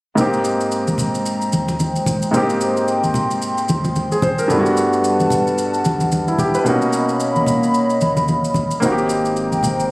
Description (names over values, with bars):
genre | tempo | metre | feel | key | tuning
amapiano | 111 BPM | 4/4 | swing 58% on 16ths | Ab major | A4 = 442 Hz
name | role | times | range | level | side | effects
warm concert grand piano | accompaniment | 0.2-9.9 s | G2 to C5 | -18 LUFS | equal | none
hollow soft pad | sustained chords | 0.2-9.9 s | G3 to C6 | -20 LUFS | equal | chorus
shaker | drums | 0.2-9.9 s | none | -30 LUFS | equal | none
congas | percussion | 0.2-9.8 s | none | -21 LUFS | equal | none
sub bass with octave | bass | 8.8-9.9 s | Ab1 | -29 LUFS | equal | none
room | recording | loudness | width
light reverb, small room reverb | recorded on a phone in the room, studio reverb | -15 LUFS | side -23 dB against mid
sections
0.2-9.9 A section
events
none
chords
0.2 Abmaj9; 4.5 Gmaj9; 6.7 Bmaj9; 8.8 Abmaj9